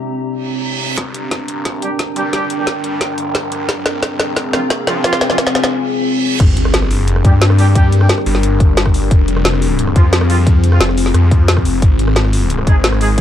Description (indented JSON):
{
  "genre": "dark technical drum and bass",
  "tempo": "177 BPM",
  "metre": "4/4",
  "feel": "straight",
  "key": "G phrygian",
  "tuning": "A4 = 439 Hz",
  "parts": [
    { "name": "deep dark ambient pad", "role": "sustained chords", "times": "0.0-13.2 s", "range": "G3 to E5", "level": "-21 LUFS", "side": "left 4 dB", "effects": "chorus, built-in reverb, sidechain pumping" },
    { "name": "warbly tape-like pad", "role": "texture", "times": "0.0-5.7 s", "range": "C4 to Bb5", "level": "-22 LUFS", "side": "right 1 dB", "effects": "chorus, built-in reverb, sidechain pumping" },
    { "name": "reverse cymbal, riser and sub drop", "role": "sound effects", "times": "0.4-7.8 s", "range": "none", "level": "-25 LUFS", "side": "right 1 dB", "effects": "none" },
    { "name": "snarling distorted saw bass", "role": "bass", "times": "1.0-13.2 s", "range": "F1 to G2", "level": "-15 LUFS", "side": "equal", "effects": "distortion, high-pass filter" },
    { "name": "drum and bass drum kit", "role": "drums", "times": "1.0-13.2 s", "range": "crash cymbal, hi-hat, rim click, snare drum", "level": "-18 LUFS", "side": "equal", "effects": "none" },
    { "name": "electronic kick drum", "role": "drums", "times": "1.0-13.2 s", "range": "none", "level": "-12 LUFS", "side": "equal", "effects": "high-pass filter on kick, high-pass filter on room" },
    { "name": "dark brass ensemble", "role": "stabs", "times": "1.8-13.2 s", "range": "F3 to Ab4", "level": "-23 LUFS", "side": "right 2 dB", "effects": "low-pass filter, tape echo" }
  ],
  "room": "light reverb",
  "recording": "dark, warm production",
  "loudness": "-12 LUFS",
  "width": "side -11 dB against mid",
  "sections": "1.0-6.4 A section; 6.4-13.2 B section",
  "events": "reverse cymbal 0.4-1.0, 5.7-6.4; build-up 1.0-6.4; drum fill 1.0-5.7; filter sweep on brass ensemble 1.0-6.4; break 5.7-6.4; drop 6.4-13.2; impact 6.4-7.8",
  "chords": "0.0 C7; 1.0 Gm; 3.7 Fm; 6.4 Gm; 9.1 Fm; 11.8 Abadd9",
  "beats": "0.30 0.64 | 0.97 1.31 1.65 1.99 | 2.33 2.67 3.01 3.35 | 3.69 4.03 4.37 4.70 | 5.04 5.38 5.72 6.06 | 6.40 6.74 7.08 7.42 | 7.75 8.09 8.43 8.77 | 9.11 9.45 9.79 10.13 | 10.47 10.81 11.14 11.48 | 11.82 12.16 12.50 12.84 | 13.18"
}